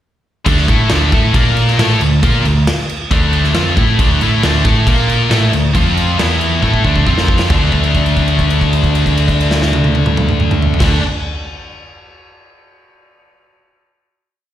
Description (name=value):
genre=hard rock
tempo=136 BPM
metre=4/4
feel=straight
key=D minor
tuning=A4 = 439 Hz
part: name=heavy high-gain guitar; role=riff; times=0.4-11.0 s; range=D3 to Bb4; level=-21 LUFS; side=equal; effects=distortion, slapback echo
part: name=sludgy distorted guitar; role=riff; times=0.5-11.0 s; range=D3 to Bb4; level=-20 LUFS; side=right 9 dB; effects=overdrive, slapback echo
part: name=tight distorted guitar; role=riff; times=0.5-11.0 s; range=D3 to Bb4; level=-18 LUFS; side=left 10 dB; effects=distortion, slapback echo
part: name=picked electric bass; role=bass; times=0.5-11.0 s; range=D2 to Bb2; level=-15 LUFS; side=equal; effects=none
part: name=big rock drum kit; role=drums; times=0.5-10.9 s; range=crash cymbal, kick drum, snare drum, toms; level=-16 LUFS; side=equal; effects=none
room=little or no reverb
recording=live gig heard through the venue's PA, recital hall reverb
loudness=-11 LUFS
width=side -12 dB against mid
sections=0.5-7.5 riff; 7.5-11.1 final chord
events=drum fill 6.6-7.5; held note 7.5-10.8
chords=0.5 D5; 1.3 Bb5; 1.8 Dm; 4.9 Bb5; 5.3 D5; 5.7 F5; 6.2 E5; 6.6 D5; 7.1 F5; 7.5 D5